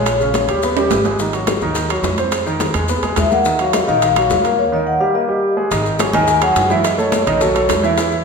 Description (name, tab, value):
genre	Afro-Cuban jazz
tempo	212 BPM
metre	4/4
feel	straight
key	Eb minor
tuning	A4 = 443 Hz
part	vibraphone with soft mallets	melody	0.0-0.9, 3.2-7.8 s	Db5 to G#5	-18 LUFS	left 3 dB	none
part	warm grand piano	accompaniment	0.0-8.2 s	Db3 to E5	-18 LUFS	right 2 dB	none
part	upright bass	bass	0.0-8.2 s	Ab1 to F#2	-25 LUFS	right 1 dB	none
part	bongos	percussion	0.1-8.2 s	none	-25 LUFS	left 5 dB	none
part	congas	percussion	0.1-8.2 s	none	-26 LUFS	left 1 dB	none
part	maracas	percussion	0.1-8.2 s	none	-30 LUFS	left 4 dB	none
part	timbales	percussion	0.1-8.1 s	none	-24 LUFS	right 7 dB	none
room	wet recital hall reverb, RT60 1.6 s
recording	recorded in a church or concert hall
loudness	-14 LUFS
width	side -5 dB against mid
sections	0.0-5.7 A section; 5.7-8.2 B section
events	drum fill 0.8-1.2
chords	0.1 Bbm7; 0.6 Ebaug7; 1.2 Ab5; 2.3 Fm7; 2.9 E; 3.5 Ebmadd9; 5.2 Eb; 5.7 G#5; 6.8 F#m7; 7.4 B5